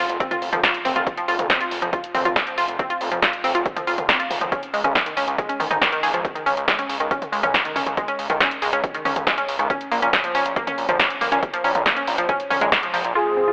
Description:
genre	uplifting trance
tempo	139 BPM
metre	4/4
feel	straight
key	unclear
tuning	A4 = 442 Hz
part	analog pluck	arpeggios	0.0-13.5 s	Eb3 to Ab4	-26 LUFS	equal	chorus, sidechain pumping, dub echo
part	gritty driven synth bass	bass	0.0-13.1 s	F1 to Db2	-28 LUFS	equal	tube saturation, sidechain pumping
part	punchy analog drum machine	drums	0.1-13.2 s	crash cymbal, hi-hat, snare drum, toms	-25 LUFS	equal	low-pass filter on hats, low-pass filter on snare, low-pass filter on cymbals, low-pass filter on toms
part	electronic kick drum	drums	0.2-12.8 s	none	-28 LUFS	equal	none
part	warm velvety synth lead	second line	13.2-13.5 s	Ab4	-21 LUFS	equal	chorus
part	lush unison pad	sustained chords	13.2-13.5 s	F2 to C5	-32 LUFS	equal	chorus, sidechain pumping
part	impact	sound effects	13.2-13.5 s	none	-46 LUFS	equal	none
room	moderate lush hall reverb, RT60 2.1 s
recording	telephone sound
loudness	-21 LUFS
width	mono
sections	0.0-13.2 A section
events	impact 13.2-13.5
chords	0.0 F5; 4.5 Dbsus2; 9.7 Bbm

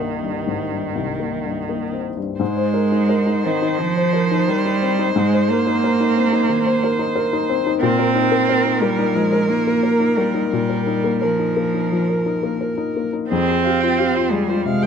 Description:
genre	neoclassical piano and strings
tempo	88 BPM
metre	4/4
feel	uneven beats, rubato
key	unclear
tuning	A4 = 440 Hz
part	rich cello	second line	0.0-14.9 s	Eb3 to C4	-20 LUFS	right 5 dB	none
part	felt-muted upright piano	accompaniment	0.0-14.9 s	C2 to C5	-20 LUFS	left 5 dB	none
part	rich viola	accompaniment	2.4-14.9 s	Ab4 to G5	-25 LUFS	right 1 dB	none
room	light reverb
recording	none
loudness	-17 LUFS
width	side -7 dB against mid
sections	0.0-2.4 A section; 2.4-14.9 A section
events	none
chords	0.0 Cm7; 2.4 Abadd9; 7.8 Bbsus4; 13.3 Fmadd9

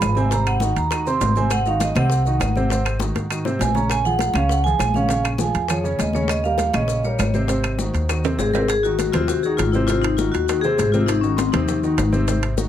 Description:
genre	Afro-Cuban jazz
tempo	201 BPM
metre	4/4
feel	straight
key	Ab mixolydian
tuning	A4 = 441 Hz
part	vibraphone with medium mallets	melody	0.0-12.4 s	C4 to C6	-22 LUFS	left 1 dB	tape echo
part	warm baby grand piano	accompaniment	0.0-12.7 s	C3 to Db5	-25 LUFS	right 2 dB	none
part	upright bass	bass	0.0-12.7 s	Ab1 to Ab2	-22 LUFS	equal	none
part	bongos	percussion	0.0-12.7 s	none	-32 LUFS	left 8 dB	none
part	claves	percussion	0.0-8.2 s	none	-32 LUFS	left 8 dB	none
part	congas	percussion	0.0-12.7 s	none	-28 LUFS	left 3 dB	none
part	maracas	percussion	0.0-12.7 s	none	-36 LUFS	left 10 dB	none
part	timbales	percussion	0.0-12.6 s	none	-28 LUFS	right 9 dB	none
room	light reverb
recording	close, detailed microphones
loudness	-18 LUFS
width	side -10 dB against mid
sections	0.0-8.7 A section; 8.7-12.7 A section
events	drum fill 3.0-3.9, 8.2-8.7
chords	0.3 Ab7; 3.9 Bbm7; 6.3 Eb7; 7.5 Ab7

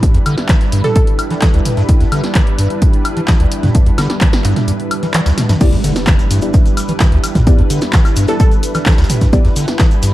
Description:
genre	acid house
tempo	129 BPM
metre	4/4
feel	straight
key	E minor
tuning	A4 = 440 Hz
part	lush unison pad	sustained chords	0.0-10.1 s	G3 to B4	-21 LUFS	right 1 dB	chorus, phaser, sidechain pumping
part	acid bass, square	riff	0.0-10.1 s	D2 to E3	-17 LUFS	equal	analog chorus, cassette tape, sidechain pumping
part	electronic kick drum	drums	0.0-9.9 s	none	-12 LUFS	equal	none
part	electronic tambourine and snare drum	drums	0.0-10.1 s	none	-31 LUFS	equal	none
part	punchy analog drum machine	drums	0.0-10.1 s	crash cymbal, handclaps, hi-hat, snare drum, toms, woodblock	-19 LUFS	equal	none
part	glassy wavetable pluck	melody	0.8-1.0, 8.3-8.5 s	A4	-22 LUFS	right 1 dB	chorus, digital delay
part	deep mellow chord stab	stabs	5.6-9.4 s	B3 to D5	-23 LUFS	left 2 dB	chorus, dub echo
part	cabasa	percussion	5.6-10.1 s	none	-30 LUFS	left 2 dB	none
part	impact	sound effects	5.6-7.5 s	none	-23 LUFS	equal	none
room	light reverb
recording	dark, warm production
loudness	-10 LUFS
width	side -15 dB against mid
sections	0.0-5.6 A section; 5.6-10.1 B section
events	break 4.7-5.6; drum fill 5.4; drop 5.6-10.1; impact 5.6-7.5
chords	0.0 Em7

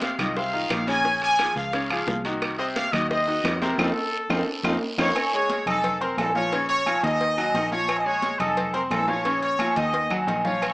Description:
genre	latin, salsa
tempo	176 BPM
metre	4/4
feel	straight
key	Bb minor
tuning	A4 = 439 Hz
part	bright trumpet section	melody	0.0-10.7 s	A4 to Ab5	-25 LUFS	equal	none
part	bright concert grand piano	accompaniment	0.0-10.7 s	C3 to Eb6	-28 LUFS	left 1 dB	none
part	fingered electric bass	bass	0.0-10.7 s	F1 to F2	-32 LUFS	equal	none
part	bongos and cowbell	percussion	0.0-10.7 s	none	-33 LUFS	left 1 dB	none
part	congas	percussion	0.0-10.7 s	none	-34 LUFS	equal	none
part	guiro	percussion	0.0-5.1, 10.6-10.7 s	none	-37 LUFS	right 1 dB	none
part	timbales and agogo bells	percussion	0.0-10.7 s	none	-28 LUFS	right 1 dB	none
part	claves	percussion	0.2-10.7 s	none	-31 LUFS	right 1 dB	none
room	light reverb, small room ambience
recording	rough home demo mix, small speaker sound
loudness	-21 LUFS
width	side -22 dB against mid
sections	0.0-5.2 A section; 5.2-10.7 B section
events	band accent 3.8-5.2; drum fill 4.5-5.2, 9.6-10.6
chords	0.0 F7(no3); 1.0 Bbm7; 2.4 Cdim; 3.8 F7; 5.2 F7alt; 5.8 F5; 6.5 Bbm; 7.2 Ebm; 7.9 Bbm7; 8.6 F5; 9.3 Bbm; 9.9 Ebm

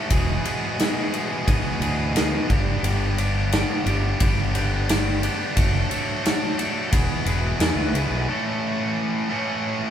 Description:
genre	classic rock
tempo	88 BPM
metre	4/4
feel	straight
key	A major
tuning	A4 = 441 Hz
part	distorted electric guitar	riff	0.0-9.9 s	E2 to A4	-24 LUFS	equal	overdrive
part	growling fingered electric bass	bass	0.1-8.3 s	E1 to E2	-25 LUFS	equal	overdrive
part	big rock drum kit	drums	0.1-8.1 s	kick drum, ride cymbal, snare drum	-24 LUFS	equal	none
room	light reverb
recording	band playing live in one room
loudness	-20 LUFS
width	side -9 dB against mid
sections	0.0-8.3 A section; 8.3-9.9 B section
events	none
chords	0.1 E; 2.5 G; 5.6 D/F#; 6.9 E; 8.3 A

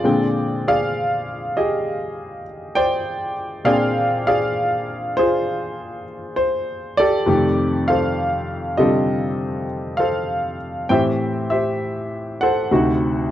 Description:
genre	solo jazz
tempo	66 BPM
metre	4/4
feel	swing 68% on 8ths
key	unclear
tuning	A4 = 440 Hz
part	clear concert grand piano	solo	0.0-13.3 s	D2 to G5	-18 LUFS	equal	none
room	little or no reverb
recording	dry, close 1970s-style studio recording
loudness	-18 LUFS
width	side -12 dB against mid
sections	0.0-13.3 A section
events	none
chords	0.0 Bb13; 7.3 F13; 10.9 Am7; 12.7 D7b9

